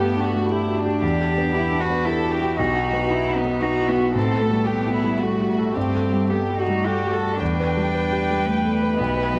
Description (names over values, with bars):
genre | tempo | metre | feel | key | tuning
neoclassical piano and strings | 114 BPM | 3/4 | rubato | E minor | A4 = 440 Hz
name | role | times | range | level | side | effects
warm chamber violin section | melody | 0.0-9.4 s | D4 to G5 | -29 LUFS | equal | analog delay
rich cello | second line | 0.0-9.4 s | A3 to G4 | -27 LUFS | equal | analog delay
warm concert grand piano | accompaniment | 0.0-9.4 s | B1 to B4 | -25 LUFS | equal | analog delay
ethereal airy pad | sustained chords | 0.3-9.4 s | G3 to E5 | -35 LUFS | equal | none
dark viola | accompaniment | 7.4-9.4 s | B4 | -30 LUFS | equal | analog delay
room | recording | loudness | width
moderate plate reverb, RT60 2.5 s | echo-heavy mix, cassette tape | -21 LUFS | mono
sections
0.0-7.4 A section; 7.4-9.4 A section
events
none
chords
0.0 Gadd9; 1.0 Em7; 2.6 B; 4.2 A5; 5.8 Gsus2; 7.4 Em7